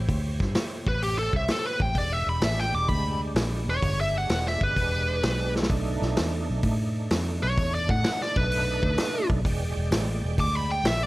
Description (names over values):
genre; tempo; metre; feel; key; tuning
blues rock power trio and southern rock; 128 BPM; 4/4; swing 68% on 8ths; unclear; A4 = 439 Hz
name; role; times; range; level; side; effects
overdriven tonewheel organ; sustained chords; 0.0-11.1 s; G#3 to G5; -35 LUFS; right 4 dB; slow rotary speaker, chorus vibrato
vintage muted fingered electric bass; bass; 0.0-11.1 s; E1 to A2; -28 LUFS; equal; none
vintage drum kit; drums; 0.1-11.0 s; hi-hat, kick drum, snare drum; -28 LUFS; equal; none
biting lead guitar; melody; 0.9-11.1 s; G4 to D6; -28 LUFS; equal; overdrive
room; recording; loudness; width
light reverb, small room ambience; none; -23 LUFS; side -19 dB against mid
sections
0.0-11.1 A section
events
lead electric guitar solo 0.0-11.1; drum fill 5.5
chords
0.0 A7#9; 2.0 E7#9; 5.7 B7#9; 9.4 E7#9